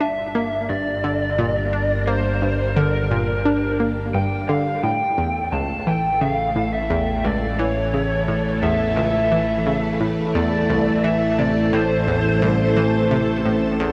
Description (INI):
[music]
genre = ambient, sequencer-driven space music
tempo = 87 BPM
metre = 4/4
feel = straight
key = unclear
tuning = A4 = 440 Hz
[part]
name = lead guitar through a small cranked amp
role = melody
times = 0.0-13.9 s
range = Bb4 to A5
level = -26 LUFS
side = equal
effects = overdrive, lush chorus, analog delay
[part]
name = string machine, full ensemble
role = sustained chords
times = 0.0-13.9 s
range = E3 to A5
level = -26 LUFS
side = equal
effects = ensemble chorus
[part]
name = analog pluck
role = riff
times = 0.0-13.9 s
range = C2 to D4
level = -26 LUFS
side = equal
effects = chorus, analog delay
[part]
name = analog drone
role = bass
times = 0.3-13.9 s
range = G1 to A1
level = -28 LUFS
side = equal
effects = chorus
[sound]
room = wet plate reverb, RT60 2.8 s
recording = dreamy mix soaked in reverb, cassette tape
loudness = -20 LUFS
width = mono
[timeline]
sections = 0.0-13.9 A section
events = fade-in on string machine 0.0-13.9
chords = 0.0 Gm; 4.8 A; 10.4 Am